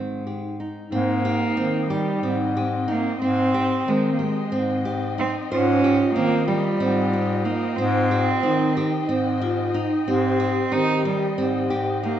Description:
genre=contemporary instrumental, chamber music in an uneven meter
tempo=183 BPM (eighths)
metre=7/8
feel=straight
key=Ab major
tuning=A4 = 439 Hz
part: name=rich cello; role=melody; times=0.0-12.2 s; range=G3 to Eb4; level=-24 LUFS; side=right 3 dB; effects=none
part: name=vibraphone with soft mallets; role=second line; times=0.0-12.2 s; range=C4 to G4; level=-28 LUFS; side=left 1 dB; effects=none
part: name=nylon-string guitar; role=arpeggios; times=0.0-12.2 s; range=C4 to C5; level=-26 LUFS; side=right 3 dB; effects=none
part: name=warm bass clarinet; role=bass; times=0.0-12.2 s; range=Ab2 to Eb3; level=-26 LUFS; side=left 4 dB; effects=none
part: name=dark studio string section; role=sustained chords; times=0.9-12.2 s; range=C5 to G5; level=-34 LUFS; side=left 3 dB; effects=none
room=wet scoring stage reverb, RT60 1.8 s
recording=dark, warm production, nothing above 7.7 kHz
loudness=-20 LUFS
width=side -10 dB against mid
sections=0.9-12.2 A section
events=none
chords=0.0 Abmaj7

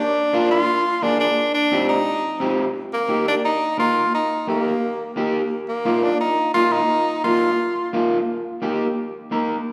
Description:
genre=latin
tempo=174 BPM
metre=4/4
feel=straight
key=Eb major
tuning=A4 = 440 Hz
part: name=clear tenor saxophone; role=melody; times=0.0-7.9 s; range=Bb3 to F4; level=-22 LUFS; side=equal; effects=none
part: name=electric guitar at the edge of break-up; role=accompaniment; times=0.3-9.6 s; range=Bb3 to Bb4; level=-24 LUFS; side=equal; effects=none
room=wet recital hall reverb, RT60 1.6 s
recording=recorded in a church or concert hall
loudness=-21 LUFS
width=mono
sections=0.0-2.8 A section; 2.8-9.7 B section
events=none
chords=0.0 Bb; 1.4 Cm; 2.8 Eb; 5.5 Bbsus4; 8.3 Eb

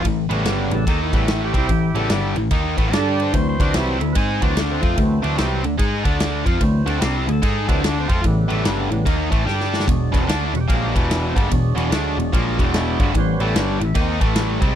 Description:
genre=blues rock power trio and southern rock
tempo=147 BPM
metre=4/4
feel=swing 64% on 8ths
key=unclear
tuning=A4 = 436 Hz
part: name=overdriven tonewheel organ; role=sustained chords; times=0.0-14.8 s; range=C#3 to G5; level=-26 LUFS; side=right 3 dB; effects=slow rotary speaker
part: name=distorted electric guitar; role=riff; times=0.0-14.8 s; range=E2 to G#4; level=-21 LUFS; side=left 1 dB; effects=overdrive
part: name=vintage muted picked electric bass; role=bass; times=0.0-14.8 s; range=E1 to G#2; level=-23 LUFS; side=equal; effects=none
part: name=big rock drum kit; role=drums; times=0.0-14.7 s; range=kick drum, ride cymbal, snare drum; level=-22 LUFS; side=equal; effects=none
room=light reverb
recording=dry, close 1970s-style studio recording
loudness=-17 LUFS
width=side -10 dB against mid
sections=0.0-14.8 A section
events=tonewheel organ solo 0.0-14.8; drum fill 9.5-9.9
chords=0.1 A7; 2.9 G5; 3.3 D7; 8.2 A7; 9.5 G5; 9.9 E7; 13.1 A7

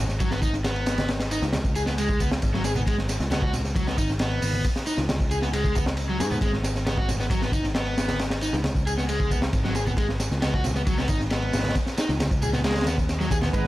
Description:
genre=breakbeat, breaks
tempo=135 BPM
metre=4/4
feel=straight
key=G# minor pentatonic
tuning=A4 = 440 Hz
part: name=picked electric bass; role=bass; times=0.0-13.7 s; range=G#1 to G#2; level=-27 LUFS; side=equal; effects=tube saturation
part: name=crunchy breakbeat drum kit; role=drums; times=0.1-13.7 s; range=hi-hat, kick drum, ride cymbal, snare drum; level=-26 LUFS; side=equal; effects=none
part: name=tambourine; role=drums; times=0.1-13.6 s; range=none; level=-39 LUFS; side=right 4 dB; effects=dub echo
part: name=overdriven semi-hollow guitar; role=riff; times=0.2-13.6 s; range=F#3 to G#4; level=-28 LUFS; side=equal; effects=vintage 12-bit sampler grit, dub echo
part: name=congas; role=percussion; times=0.4-13.5 s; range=none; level=-35 LUFS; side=right 1 dB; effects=none
part: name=lush unison pad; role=sustained chords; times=13.5-13.7 s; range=B2 to G#4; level=-31 LUFS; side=right 1 dB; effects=chorus, vintage 12-bit sampler grit, sidechain pumping
part: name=warm brass ensemble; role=stabs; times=13.5-13.7 s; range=B3 to B4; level=-28 LUFS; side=right 6 dB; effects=none
room=light reverb, studio ambience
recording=echo-heavy mix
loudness=-22 LUFS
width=side -16 dB against mid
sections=0.0-13.7 A section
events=none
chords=0.0 G#m

